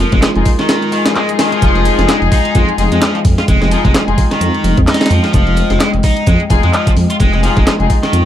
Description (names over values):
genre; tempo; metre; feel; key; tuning
breakbeat, breaks; 129 BPM; 4/4; swing 58% on 16ths; F minor; A4 = 440 Hz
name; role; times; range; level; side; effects
dark analog pad; sustained chords; 0.0-8.3 s; Ab3 to G5; -20 LUFS; equal; chorus, vintage 12-bit sampler grit, sidechain pumping
overdriven electric guitar; riff; 0.0-8.3 s; Eb3 to F4; -18 LUFS; equal; tube saturation, tape echo
dark detuned saw bass; bass; 0.0-8.2 s; F1 to F2; -15 LUFS; equal; none
breakbeat sampler-style drum kit; drums; 0.1-8.3 s; hi-hat, kick drum, snare drum; -14 LUFS; equal; none
house drum kit; drums; 0.1-8.2 s; handclaps, hi-hat; -24 LUFS; equal; none
warm studio string section; stabs; 0.4-7.9 s; Eb4 to Ab4; -19 LUFS; left 6 dB; vintage 12-bit sampler grit, tape echo
room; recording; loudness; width
little or no reverb; none; -10 LUFS; side -11 dB against mid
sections
0.0-8.3 A section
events
none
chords
0.0 Fm7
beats
0.22 0.69 1.15 | 1.62 2.08 2.55 3.02 | 3.48 3.94 4.41 4.88 | 5.34 5.80 6.27 6.74 | 7.20 7.67 8.13